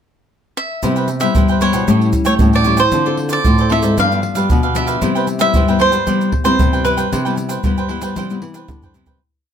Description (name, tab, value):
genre	samba and choro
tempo	114 BPM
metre	4/4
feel	straight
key	C major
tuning	A4 = 437 Hz
part	cavaquinho	melody	0.6-8.9 s	B4 to F5	-18 LUFS	right 1 dB	plate reverb
part	cavaquinho	accompaniment	0.8-9.2 s	D4 to G5	-23 LUFS	right 6 dB	none
part	nylon-string guitar	accompaniment	0.8-9.2 s	G2 to A4	-20 LUFS	left 7 dB	none
part	nylon-string guitar	bass	0.8-9.2 s	G2 to C4	-18 LUFS	right 1 dB	none
part	egg shaker, surdo, pandeiro and tamborim	percussion	0.8-9.2 s	none	-19 LUFS	equal	none
room	light reverb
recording	close, detailed microphones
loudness	-13 LUFS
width	side -8 dB against mid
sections	0.0-0.8 pickup bar; 0.8-9.2 A section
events	fade-out 7.1-9.2; drum fill 8.7-9.2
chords	0.0 N.C.; 0.8 Cmaj7; 1.9 A7; 2.9 Dm7; 4.0 G7; 5.0 Cmaj7